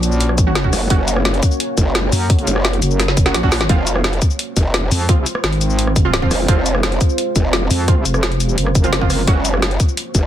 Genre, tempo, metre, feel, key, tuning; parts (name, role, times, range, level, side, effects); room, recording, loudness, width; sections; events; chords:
dark technical drum and bass; 172 BPM; 4/4; straight; F phrygian; A4 = 440 Hz
deep dark ambient pad; sustained chords; 0.0-10.3 s; Ab3 to Db5; -24 LUFS; right 1 dB; chorus, built-in reverb, sidechain pumping
metallic wobble bass; bass; 0.0-9.3 s; F1 to Gb2; -18 LUFS; equal; chorus
drum and bass drum kit; drums; 0.0-10.2 s; cabasa, hi-hat, rim click, snare drum; -20 LUFS; left 1 dB
electronic kick drum; drums; 0.4-10.2 s; -15 LUFS; equal
orchestra-hit-like synth stab; stabs; 0.5-10.3 s; F3 to Gb4; -24 LUFS; right 4 dB; built-in reverb, dub echo
growl bass; bass; 0.7-10.3 s; F1 to Gb1; -18 LUFS; equal; chorus, overdrive
digital ambience; dense, heavily limited modern master; -14 LUFS; side -11 dB against mid
0.0-10.3 A section
drum fill 3.0-3.7
0.0 Gb; 3.7 Fm; 9.3 Gb